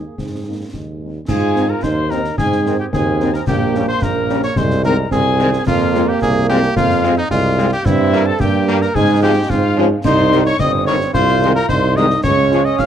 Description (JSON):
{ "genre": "military-style march for wind band", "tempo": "110 BPM", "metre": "2/4", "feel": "straight", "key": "Ab major", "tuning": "A4 = 437 Hz", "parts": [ { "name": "mellow cornet", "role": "melody", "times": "0.0-12.9 s", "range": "Eb4 to F5", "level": "-21 LUFS", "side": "equal", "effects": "none" }, { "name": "clear euphonium", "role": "second line", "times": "0.0-12.9 s", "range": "G3 to F4", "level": "-21 LUFS", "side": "right 4 dB", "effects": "none" }, { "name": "warm tuba", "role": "bass", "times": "0.0-12.9 s", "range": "G1 to Ab2", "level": "-17 LUFS", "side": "right 2 dB", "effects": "none" }, { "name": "concert snare drum, concert bass drum and clash cymbals", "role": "drums", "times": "0.2-12.9 s", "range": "none", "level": "-23 LUFS", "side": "left 1 dB", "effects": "none" }, { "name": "warm French horn section", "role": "accompaniment", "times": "0.5-12.6 s", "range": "F3 to Bb4", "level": "-22 LUFS", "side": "left 4 dB", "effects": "none" }, { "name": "mellow hollow piccolo", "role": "second line", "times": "1.3-12.9 s", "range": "Eb5 to F6", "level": "-22 LUFS", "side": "left 6 dB", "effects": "none" }, { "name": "clear trombone section", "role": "sustained chords", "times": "1.6-12.6 s", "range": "Eb3 to Db4", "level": "-25 LUFS", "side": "left 1 dB", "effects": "none" } ], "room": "light reverb", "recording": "dark, warm production", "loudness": "-13 LUFS", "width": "side -9 dB against mid", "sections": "0.0-1.3 A section; 1.3-12.9 A section", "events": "none", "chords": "0.0 Ab; 3.5 Gdim/Bb; 4.6 Ab/C; 5.7 Fm; 7.9 Gm69; 9.0 Fm/Ab; 10.0 Cm; 11.1 Ab/C; 12.2 Db" }